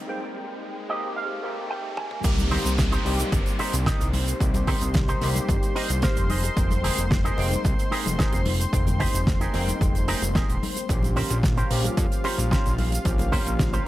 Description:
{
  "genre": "nu-disco, nu disco",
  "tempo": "111 BPM",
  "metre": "4/4",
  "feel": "straight",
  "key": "unclear",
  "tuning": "A4 = 440 Hz",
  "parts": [
    { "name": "overdriven tine electric piano", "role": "accompaniment", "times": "0.0-13.9 s", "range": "F3 to G5", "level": "-32 LUFS", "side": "left 1 dB", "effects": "ensemble chorus, sidechain pumping, digital delay" },
    { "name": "lush unison pad", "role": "sustained chords", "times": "3.2-13.9 s", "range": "F4 to C6", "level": "-33 LUFS", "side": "left 2 dB", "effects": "chorus, sidechain pumping" },
    { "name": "riser and downlifter", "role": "sound effects", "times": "0.0-6.6 s", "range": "none", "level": "-36 LUFS", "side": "equal", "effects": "none" },
    { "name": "electric guitar with an envelope filter", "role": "riff", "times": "0.9-13.9 s", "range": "Db4 to Ab5", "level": "-31 LUFS", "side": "right 2 dB", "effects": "lush chorus, digital delay" },
    { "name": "damped 70s drum kit", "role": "drums", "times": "2.0-13.8 s", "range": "crash cymbal, hi-hat, shaker, snare drum, toms", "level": "-29 LUFS", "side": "right 1 dB", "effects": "none" },
    { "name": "fat analog bass", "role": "bass", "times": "2.2-13.8 s", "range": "Eb1 to F2", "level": "-26 LUFS", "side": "equal", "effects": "none" },
    { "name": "electronic kick drum", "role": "drums", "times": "2.2-13.7 s", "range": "none", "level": "-25 LUFS", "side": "equal", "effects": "none" },
    { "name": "bongos and congas", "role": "percussion", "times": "2.2-13.8 s", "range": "none", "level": "-35 LUFS", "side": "left 2 dB", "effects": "none" }
  ],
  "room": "studio ambience",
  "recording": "high-pass filter",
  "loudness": "-21 LUFS",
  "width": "side -15 dB against mid",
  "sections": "0.0-2.2 A section; 2.2-13.9 B section",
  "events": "build-up 0.0-2.2; riser 0.0-2.2; break 0.1-2.2; clean electric guitar fill 0.6-2.2, 5.5-6.6, 13.6; drum fill 2.0; drop 2.2-13.9",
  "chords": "0.0 Fm11; 2.2 Cm7; 6.3 Fm11; 10.9 Bbm69"
}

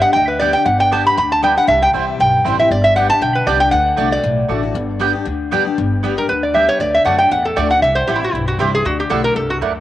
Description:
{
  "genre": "bluegrass",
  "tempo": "235 BPM",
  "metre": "4/4",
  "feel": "swing 55% on 8ths",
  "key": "G major",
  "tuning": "A4 = 442 Hz",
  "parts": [
    { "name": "lap resonator guitar", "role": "melody", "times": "0.0-9.6 s", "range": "E4 to B5", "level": "-14 LUFS", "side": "right 1 dB", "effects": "cassette tape, tape echo" },
    { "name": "picked steel-string acoustic guitar", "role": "accompaniment", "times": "0.0-9.8 s", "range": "F#2 to G4", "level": "-22 LUFS", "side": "left 7 dB", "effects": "cassette tape" },
    { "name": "upright bass", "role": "bass", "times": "0.2-9.8 s", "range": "G1 to F#2", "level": "-22 LUFS", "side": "equal", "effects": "none" },
    { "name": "mandolin", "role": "stabs", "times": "0.4-9.7 s", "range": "A3 to A5", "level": "-22 LUFS", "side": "right 7 dB", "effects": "cassette tape" }
  ],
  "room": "moderate spring reverb, RT60 2.6 s",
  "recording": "home recording on cassette",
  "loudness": "-13 LUFS",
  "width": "side -13 dB against mid",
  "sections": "0.0-5.8 A section; 5.8-9.8 B section",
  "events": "resonator guitar played with a steel bar solo 0.0-5.8",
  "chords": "0.0 G; 1.7 C; 2.7 G; 3.7 D; 4.8 G; 6.8 D; 7.8 C; 8.8 Dadd9"
}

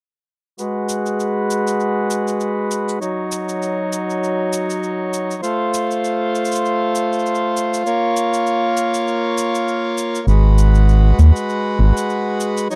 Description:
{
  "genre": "folktronica",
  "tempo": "99 BPM",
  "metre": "4/4",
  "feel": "swing 56% on 16ths",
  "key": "G# dorian",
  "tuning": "A4 = 440 Hz",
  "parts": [
    { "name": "accordion", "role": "sustained chords", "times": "0.6-12.8 s", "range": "F#3 to C#5", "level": "-21 LUFS", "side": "equal", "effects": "low-pass filter" },
    { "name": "shaker", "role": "drums", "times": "0.6-12.8 s", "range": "none", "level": "-32 LUFS", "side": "equal", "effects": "none" },
    { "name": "round analog bass", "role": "bass", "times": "10.3-11.9 s", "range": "G#1 to D#2", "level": "-12 LUFS", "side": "equal", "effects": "none" }
  ],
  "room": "little or no reverb",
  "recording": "dry, close 1970s-style studio recording",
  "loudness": "-18 LUFS",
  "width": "mono",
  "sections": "0.6-12.8 A section",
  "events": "filter sweep on accordion 0.6-12.8",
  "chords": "0.6 G#m7; 3.0 D#m7/F#; 5.4 F; 7.9 A#m; 10.3 G#m7"
}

